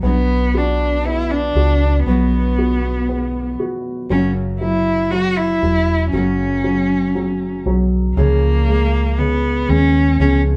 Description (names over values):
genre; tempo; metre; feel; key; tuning
pop ballad; 59 BPM; 4/4; straight; B harmonic minor; A4 = 440 Hz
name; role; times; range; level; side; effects
warm cello; melody; 0.0-10.4 s; A#3 to F#4; -22 LUFS; equal; none
dark baby grand piano; accompaniment; 0.0-10.6 s; C#3 to F#4; -24 LUFS; equal; none
nylon-string guitar; arpeggios; 0.0-10.6 s; F#2 to G#4; -28 LUFS; equal; none
vintage muted fingered electric bass; bass; 0.0-10.6 s; E1 to D#2; -21 LUFS; equal; none
room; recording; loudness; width
moderate studio reverb, RT60 0.6 s; band playing live in one room; -17 LUFS; mono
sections
0.0-10.6 A section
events
none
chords
0.0 Bm; 4.1 F#; 8.2 C#7